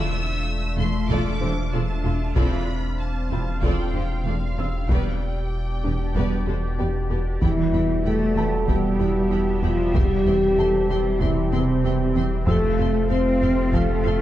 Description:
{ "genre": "cinematic, hybrid orchestral and electronic film score", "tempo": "95 BPM", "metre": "4/4", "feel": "straight", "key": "E phrygian", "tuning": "A4 = 436 Hz", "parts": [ { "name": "rich symphonic violin section", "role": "melody", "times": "0.0-14.1 s", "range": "F5 to E6", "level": "-37 LUFS", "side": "left 1 dB", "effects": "none" }, { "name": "clear symphonic violin section", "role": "second line", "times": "0.0-14.1 s", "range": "F4 to G5", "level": "-38 LUFS", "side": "left 3 dB", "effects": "none" }, { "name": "clear symphonic viola section", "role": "accompaniment", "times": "0.0-14.1 s", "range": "A3 to G4", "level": "-35 LUFS", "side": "equal", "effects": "none" }, { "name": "sweeping resonant pad", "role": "sustained chords", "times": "0.0-14.2 s", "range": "B2 to F5", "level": "-31 LUFS", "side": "equal", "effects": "chorus" }, { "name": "glassy wavetable pluck", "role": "arpeggios", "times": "0.0-14.2 s", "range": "C3 to G4", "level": "-32 LUFS", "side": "equal", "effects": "chorus, tape echo" }, { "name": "pure sine sub bass", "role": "bass", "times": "0.0-14.2 s", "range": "E1 to F1", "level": "-26 LUFS", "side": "equal", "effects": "none" }, { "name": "clear symphonic cello section", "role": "bass", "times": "0.8-14.2 s", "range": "E2 to C4", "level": "-27 LUFS", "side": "right 2 dB", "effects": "none" }, { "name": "clear symphonic double bass section", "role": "bass", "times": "0.8-14.1 s", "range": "E1 to F2", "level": "-29 LUFS", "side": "right 3 dB", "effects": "none" }, { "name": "taiko ensemble", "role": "drums", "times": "1.1-14.2 s", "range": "none", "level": "-26 LUFS", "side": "equal", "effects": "none" }, { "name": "felt-muted upright piano", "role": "texture", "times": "1.4-14.2 s", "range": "G4 to E6", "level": "-36 LUFS", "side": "equal", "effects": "tape echo" }, { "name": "bright trombone section", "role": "sustained chords", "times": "7.4-14.2 s", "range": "B2 to G3", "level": "-32 LUFS", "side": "right 2 dB", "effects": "none" }, { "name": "warm French horn section", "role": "sustained chords", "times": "7.4-14.2 s", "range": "C4 to C5", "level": "-24 LUFS", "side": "left 1 dB", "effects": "none" } ], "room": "moderate scoring stage reverb, RT60 1.5 s", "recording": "dark, warm production", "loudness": "-20 LUFS", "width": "side -13 dB against mid", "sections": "0.0-7.4 A section; 7.4-14.2 B section", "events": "none", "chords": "0.0 Dmadd9/E; 2.4 F6/E; 4.9 G/E; 7.4 Em; 9.9 C/E; 12.5 F", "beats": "0.47 1.10 1.73 | 2.37 3.00 3.63 4.26 | 4.89 5.52 6.15 6.79 | 7.42 8.05 8.68 9.31 | 9.94 10.57 11.21 11.84 | 12.47 13.10 13.73" }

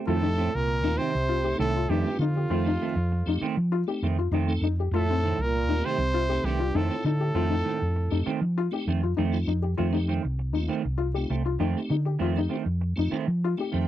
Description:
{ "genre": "afrobeat", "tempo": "99 BPM", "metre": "4/4", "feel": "straight", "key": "F mixolydian", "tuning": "A4 = 440 Hz", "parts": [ { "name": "semi-hollow electric guitar", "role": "stabs", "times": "0.0-13.9 s", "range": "Eb3 to C4", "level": "-30 LUFS", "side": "right 7 dB", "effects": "lush chorus" }, { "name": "clear trumpet", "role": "melody", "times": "0.1-8.2 s", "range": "F4 to C5", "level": "-30 LUFS", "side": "equal", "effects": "none" }, { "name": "mellow trombone section", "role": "second line", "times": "0.1-8.2 s", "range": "F2 to C3", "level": "-33 LUFS", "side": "right 6 dB", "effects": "none" }, { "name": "felt-muted upright piano", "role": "arpeggios", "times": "0.1-13.8 s", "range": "C4 to G4", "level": "-31 LUFS", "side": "left 10 dB", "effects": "none" }, { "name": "hollow-body short-scale fingered electric bass", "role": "bass", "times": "0.1-13.9 s", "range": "C2 to F3", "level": "-26 LUFS", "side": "equal", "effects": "none" }, { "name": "tonewheel organ", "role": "accompaniment", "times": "0.2-13.9 s", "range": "A3 to G5", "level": "-33 LUFS", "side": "equal", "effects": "slow rotary speaker, overdrive, chorus vibrato" } ], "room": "little or no reverb", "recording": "dry, close 1970s-style studio recording", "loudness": "-24 LUFS", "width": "side -12 dB against mid", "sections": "0.1-13.9 A section", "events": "tonewheel organ fill 13.4-13.9", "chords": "0.1 F7", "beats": "| 0.07 0.68 1.29 1.89 | 2.50 3.11 3.71 4.32 | 4.93 5.54 6.14 6.75 | 7.36 7.96 8.57 9.18 | 9.78 10.39 10.99 11.60 | 12.21 12.81 13.42" }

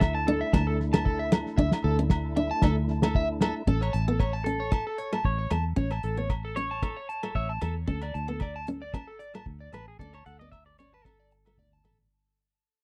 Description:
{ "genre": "highlife guitar band", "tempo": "114 BPM", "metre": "4/4", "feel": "swing 53% on 16ths", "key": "unclear", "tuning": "A4 = 438 Hz", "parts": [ { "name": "picked steel-string acoustic guitar", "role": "accompaniment", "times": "0.0-12.0 s", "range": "A3 to D4", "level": "-32 LUFS", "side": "equal", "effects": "none" }, { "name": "percussive tonewheel organ", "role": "sustained chords", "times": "0.0-3.6 s", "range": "A3 to E4", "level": "-37 LUFS", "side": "equal", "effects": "slow rotary speaker, overdrive, chorus vibrato" }, { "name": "electric guitar at the edge of break-up", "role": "arpeggios", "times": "0.0-12.0 s", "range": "A4 to A5", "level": "-36 LUFS", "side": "equal", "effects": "phaser, tape echo" }, { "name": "fingered electric bass", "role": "bass", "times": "0.0-12.1 s", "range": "A1 to E2", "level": "-32 LUFS", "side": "equal", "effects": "none" }, { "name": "cloth-damped thuddy drum kit", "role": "drums", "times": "0.0-12.0 s", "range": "hi-hat, kick drum, rim click, snare drum", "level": "-28 LUFS", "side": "equal", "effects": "none" }, { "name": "agogo bells", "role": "percussion", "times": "0.0-12.0 s", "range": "none", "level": "-41 LUFS", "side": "equal", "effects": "none" }, { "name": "clean electric guitar", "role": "melody", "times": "4.4-11.6 s", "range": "G#4 to F#5", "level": "-38 LUFS", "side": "equal", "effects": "none" } ], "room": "little or no reverb", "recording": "dry, close 1970s-style studio recording, faint mains hum", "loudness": "-28 LUFS", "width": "mono", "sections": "0.0-3.7 A section; 3.7-12.1 B section", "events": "fade-out 3.7-12.1; clean electric guitar solo 3.7-12.1", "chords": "0.0 Dsus2; 3.7 A; 7.9 D5", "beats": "0.02 0.54 1.06 | 1.58 2.11 2.63 3.15 | 3.67 4.20 4.72 5.25 | 5.77 6.30 6.82 7.35 | 7.88 8.40 8.93 9.46 | 9.99 10.52 11.05 11.57" }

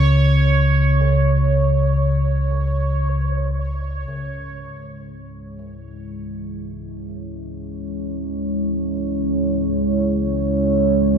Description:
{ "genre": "dark ambient drone", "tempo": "free time", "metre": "none", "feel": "none", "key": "C# minor", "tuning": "A4 = 439 Hz", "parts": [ { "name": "gamelan-type bossed gongs", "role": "arpeggios", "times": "0.0-10.1 s", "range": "C#3", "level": "-32 LUFS", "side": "right 1 dB", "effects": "ping-pong delay" }, { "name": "deep rumbling drone", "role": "drone", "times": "0.0-11.2 s", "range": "C#2 to C#3", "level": "-20 LUFS", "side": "equal", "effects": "built-in reverb, lush chorus" }, { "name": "bubbling stepped-filter texture", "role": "texture", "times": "0.0-4.1 s", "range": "C#5", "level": "-25 LUFS", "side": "right 5 dB", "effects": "chorus, built-in reverb" }, { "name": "deep dark ambient pad", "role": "sustained chords", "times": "5.5-11.2 s", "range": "G#3 to C#5", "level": "-21 LUFS", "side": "right 1 dB", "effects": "chorus, built-in reverb" } ], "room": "wet plate reverb, RT60 3.0 s", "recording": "dreamy mix soaked in reverb", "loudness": "-17 LUFS", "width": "side -7 dB against mid", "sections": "0.0-4.1 A section; 4.1-11.2 B section", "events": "fade-in on kettle gongs 4.1-11.2; filter sweep on synth drone 4.1-11.2", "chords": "0.0 N.C.; 4.1 C#m", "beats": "free time" }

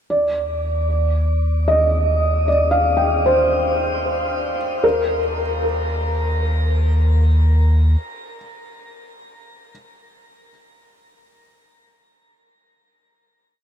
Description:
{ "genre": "ambient", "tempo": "76 BPM", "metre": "3/4", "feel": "straight", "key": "Eb major", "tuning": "A4 = 440 Hz", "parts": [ { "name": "felt-muted upright piano", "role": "arpeggios", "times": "0.1-9.7 s", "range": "Bb4 to G5", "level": "-19 LUFS", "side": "equal", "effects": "diffuse ambient delay" }, { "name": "warm sub bass", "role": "bass", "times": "0.1-8.0 s", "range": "Eb2", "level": "-18 LUFS", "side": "equal", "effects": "none" } ], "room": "moderate shimmer reverb, RT60 7.8 s", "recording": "dark, warm production", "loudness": "-16 LUFS", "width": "side -8 dB against mid", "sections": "0.1-4.8 A section; 4.8-7.2 final chord", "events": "fade-out on sub bass 0.1-4.8", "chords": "0.1 Ebmaj9", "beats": "| 0.10 0.89 1.68 | 2.46 3.25 4.04 | 4.83 5.62 6.41" }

